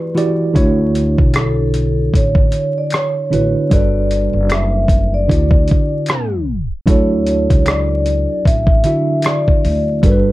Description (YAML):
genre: lo-fi hip hop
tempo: 76 BPM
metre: 4/4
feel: swing 56% on 16ths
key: D major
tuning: A4 = 442 Hz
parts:
  - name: vibraphone with soft mallets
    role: melody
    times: 0.0-10.3 s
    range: A4 to E5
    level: -19 LUFS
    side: left 1 dB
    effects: none
  - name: tine electric piano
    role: accompaniment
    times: 0.0-10.3 s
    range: D3 to E5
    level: -18 LUFS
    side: right 2 dB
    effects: medium stereo tremolo, cassette tape
  - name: dusty soul sampler-style drum kit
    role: drums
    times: 0.2-10.2 s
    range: hi-hat, kick drum, rim click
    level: -14 LUFS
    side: equal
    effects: none
  - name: upright bass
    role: bass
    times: 0.6-10.3 s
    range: F#1 to D2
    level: -18 LUFS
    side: equal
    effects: none
  - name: finger snaps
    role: percussion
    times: 1.3-9.4 s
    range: none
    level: -32 LUFS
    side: left 3 dB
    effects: none
room: light reverb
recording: vinyl crackle, tape stop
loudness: -12 LUFS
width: side -17 dB against mid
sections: 0.0-6.9 A section; 6.9-10.3 B section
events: tape stop 6.1-6.9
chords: 0.0 Em7; 0.6 Dmaj7; 3.7 Gmaj7; 5.3 Dmaj9; 6.9 Dmaj7